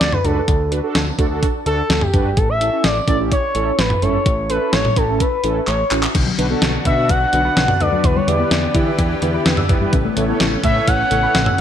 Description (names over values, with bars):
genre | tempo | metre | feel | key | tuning
synth-pop | 127 BPM | 4/4 | straight | unclear | A4 = 442 Hz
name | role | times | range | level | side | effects
expressive portamento lead | melody | 0.0-11.6 s | G4 to F#5 | -20 LUFS | equal | chorus, ping-pong delay
fat analog bass | bass | 0.0-11.6 s | G1 to E3 | -22 LUFS | equal | none
clean 12-bit digital drum machine | drums | 0.0-11.6 s | crash cymbal, handclaps, hi-hat, kick drum, snare drum, toms | -18 LUFS | equal | none
mellow synth brass | accompaniment | 0.2-11.6 s | C#4 to C#5 | -24 LUFS | right 2 dB | chorus
soft round pluck | arpeggios | 6.1-11.6 s | C#3 to F#6 | -24 LUFS | left 4 dB | chorus, ping-pong delay
lush unison pad | sustained chords | 6.2-11.6 s | E3 to G4 | -24 LUFS | equal | chorus
room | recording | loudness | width
moderate plate reverb, RT60 1.4 s | bright 1980s-style digital production | -15 LUFS | side -9 dB against mid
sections
0.0-6.2 A section; 6.2-11.6 B section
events
drum fill 5.7-6.2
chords
0.0 D; 2.4 Aadd9; 6.2 Bm; 8.0 Em7; 9.9 Aadd9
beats
0.01 | 0.48 0.95 1.43 1.90 | 2.37 2.84 3.31 3.79 | 4.26 4.73 5.21 5.68 | 6.15 6.62 7.09 7.57 | 8.04 8.51 8.98 9.46 | 9.93 10.40 10.88 11.35